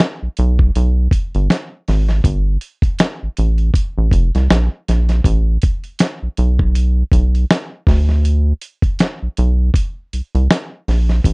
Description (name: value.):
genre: R&B, neo-soul.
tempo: 80 BPM.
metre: 4/4.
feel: swing 57% on 16ths.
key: unclear.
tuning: A4 = 441 Hz.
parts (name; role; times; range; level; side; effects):
dusty soul sampler-style drum kit; drums; 0.0-11.3 s; hi-hat, kick drum, snare drum; -15 LUFS; equal; none.
rubbery square bass; bass; 0.2-11.3 s; F1 to D2; -14 LUFS; equal; none.
room: little or no reverb.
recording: dry, close 1970s-style studio recording.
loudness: -14 LUFS.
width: side -35 dB against mid.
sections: 0.0-11.3 A section.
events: none.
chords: none.